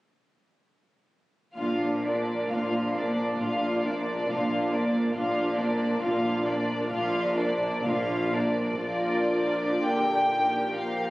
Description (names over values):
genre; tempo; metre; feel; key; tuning
classical, slow romantic movement for string orchestra; 55-71 BPM; 4/4; rubato; Bb major; A4 = 440 Hz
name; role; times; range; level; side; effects
warm studio violin section; melody; 1.6-11.1 s; D5 to G5; -30 LUFS; equal; none
dark studio violin section; second line; 1.6-11.1 s; D4 to Bb4; -30 LUFS; left 1 dB; none
dark studio viola section; accompaniment; 1.6-11.1 s; D3 to D4; -30 LUFS; equal; none
rich studio cello section; bass; 1.6-11.1 s; Bb2; -31 LUFS; right 1 dB; none
warm studio double bass section; bass; 1.6-11.1 s; Bb1; -36 LUFS; right 1 dB; none
room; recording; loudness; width
moderate scoring stage reverb, RT60 2.0 s; recorded on a phone in the room, club reverb, compression; -24 LUFS; side -19 dB against mid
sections
1.6-8.8 A section; 8.8-11.1 B section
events
none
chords
1.6 Bb